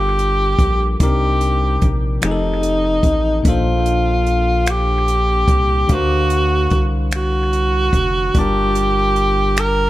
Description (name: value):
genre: slow six-eight R&B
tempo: 49 BPM (dotted quarters)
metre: 6/8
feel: straight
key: G minor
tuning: A4 = 441 Hz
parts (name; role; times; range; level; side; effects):
- warm tenor saxophone; melody; 0.0-9.9 s; Eb4 to Bb4; -18 LUFS; equal; analog delay
- bell-like tine electric piano; accompaniment; 0.0-9.9 s; Bb2 to A5; -23 LUFS; left 4 dB; wide subtle chorus, analog delay
- rubbery square bass; bass; 0.0-9.9 s; F1 to D2; -19 LUFS; equal; none
- compact cocktail drum kit; drums; 0.2-9.8 s; finger snaps, hi-hat, kick drum; -19 LUFS; equal; none
room: light reverb, small room ambience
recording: echo-heavy mix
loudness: -14 LUFS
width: side -16 dB against mid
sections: 0.0-9.9 A section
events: none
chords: 0.0 Gm7; 1.0 Cm9; 2.2 F9; 3.4 Bbmaj9; 5.9 D7alt; 8.3 Gm9